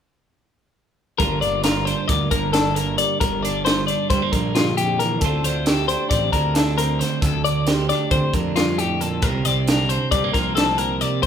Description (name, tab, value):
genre	math rock and midwest emo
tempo	269 BPM (eighths)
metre	9/8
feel	straight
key	unclear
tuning	A4 = 441 Hz
part	twelve-string electric guitar	accompaniment	1.2-11.3 s	D2 to G4	-24 LUFS	right 7 dB	spring reverb
part	twelve-string electric guitar	arpeggios	1.2-11.3 s	F4 to D5	-22 LUFS	left 7 dB	none
part	fuzz picked electric bass	bass	1.2-11.3 s	G1 to D3	-25 LUFS	equal	overdrive
part	crisp fusion drum kit	drums	1.2-11.3 s	hi-hat, kick drum, snare drum	-23 LUFS	right 1 dB	none
room	moderate large studio reverb, RT60 0.8 s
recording	band playing live in one room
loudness	-18 LUFS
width	side -8 dB against mid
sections	1.2-11.3 A section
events	none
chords	1.2 Gm7; 5.2 Dm7; 9.2 C7sus4